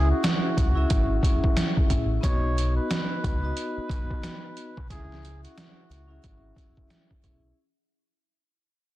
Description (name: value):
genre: hip hop, boom-bap hip-hop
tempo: 90 BPM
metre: 4/4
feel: swing 62% on 16ths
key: C# minor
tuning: A4 = 440 Hz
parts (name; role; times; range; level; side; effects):
- trumpet with cup mute; melody; 0.0-7.1 s; F#4 to C#5; -35 LUFS; equal; high-pass filter, low-pass filter, ping-pong delay
- vibraphone with soft mallets; accompaniment; 0.0-7.6 s; B3 to E5; -31 LUFS; left 2 dB; high-pass filter, low-pass filter
- deep dub picked electric bass; bass; 0.0-7.5 s; G#1 to C#2; -26 LUFS; equal; none
- trip hop sampler-style drum kit; drums; 0.2-7.4 s; hi-hat, kick drum, snare drum; -25 LUFS; equal; overdrive
room: little or no reverb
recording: dense, heavily limited modern master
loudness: -22 LUFS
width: side -15 dB against mid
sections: 0.0-7.6 A section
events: fade-out 0.0-7.6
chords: 0.0 C#m; 2.2 B; 4.9 C#m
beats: 0.23 0.90 1.57 | 2.23 2.90 3.57 4.24 | 4.90 5.57 6.24 6.90